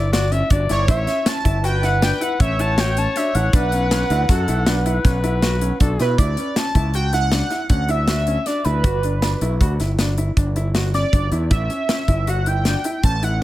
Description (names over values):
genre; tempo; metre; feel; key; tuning
progressive instrumental, band music in an uneven meter; 158 BPM; 7/4; straight; unclear; A4 = 437 Hz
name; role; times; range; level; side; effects
clear flugelhorn; second line; 0.0-6.2 s; A4 to E5; -25 LUFS; left 2 dB; none
warm concert grand piano; arpeggios; 0.0-13.3 s; C#4 to F#4; -26 LUFS; left 1 dB; analog delay
growling fingered electric bass; bass; 0.0-13.4 s; G1 to B2; -20 LUFS; equal; overdrive
modern studio drum kit; drums; 0.1-13.3 s; hi-hat, kick drum, snare drum; -20 LUFS; equal; none
octave-doubled lead; melody; 0.7-13.4 s; B4 to A5; -24 LUFS; right 1 dB; chorus, phaser, analog delay
room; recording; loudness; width
studio reverb; echo-heavy mix; -16 LUFS; side -15 dB against mid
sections
0.0-6.2 A section; 6.2-13.4 B section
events
none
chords
0.0 G5; 0.9 A7; 3.5 Bm9; 6.2 Dmaj9; 8.8 G; 11.5 A7